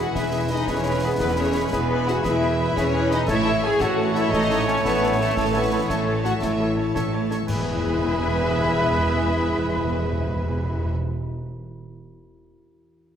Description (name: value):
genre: cinematic, heroic adventure film score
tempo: 114 BPM (dotted quarters)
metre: 12/8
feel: straight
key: E major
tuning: A4 = 440 Hz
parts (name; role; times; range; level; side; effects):
- warm symphonic violin section; melody; 0.0-10.9 s; A4 to G#5; -32 LUFS; left 4 dB; none
- clear oboe; second line; 0.0-10.9 s; B4 to C#5; -35 LUFS; right 1 dB; none
- concert flute; second line; 0.0-10.9 s; A5 to B5; -34 LUFS; left 1 dB; none
- dark clarinet; second line; 0.0-10.9 s; G#4 to A4; -33 LUFS; left 2 dB; none
- rich studio violin section; second line; 0.0-10.9 s; C#5 to C#6; -35 LUFS; left 2 dB; none
- warm symphonic viola section; accompaniment; 0.0-10.9 s; B3 to E5; -32 LUFS; equal; none
- clear trombone section; sustained chords; 0.0-10.9 s; E3 to A3; -32 LUFS; right 3 dB; none
- warm French horn section; sustained chords; 0.0-10.9 s; A3 to G#4; -26 LUFS; left 2 dB; none
- concert harp; arpeggios; 0.0-11.5 s; E2 to C#6; -32 LUFS; left 9 dB; none
- mellow trumpet; stabs; 0.0-10.9 s; B4 to C#5; -30 LUFS; right 2 dB; none
- rich symphonic cello section; bass; 0.0-10.9 s; E2 to A2; -29 LUFS; right 3 dB; none
- rich symphonic double bass section; bass; 0.0-10.9 s; E1 to A1; -30 LUFS; right 4 dB; none
- concert snare drum, concert bass drum, clash cymbals and concert toms; drums; 0.2-7.6 s; none; -33 LUFS; equal; none
- timpani; percussion; 7.5-10.9 s; E2; -28 LUFS; equal; none
room: wet concert hall reverb, RT60 1.9 s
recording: none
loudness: -20 LUFS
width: side -8 dB against mid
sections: 0.0-7.5 A section; 7.5-11.7 B section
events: none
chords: 0.0 E; 3.3 A; 7.5 E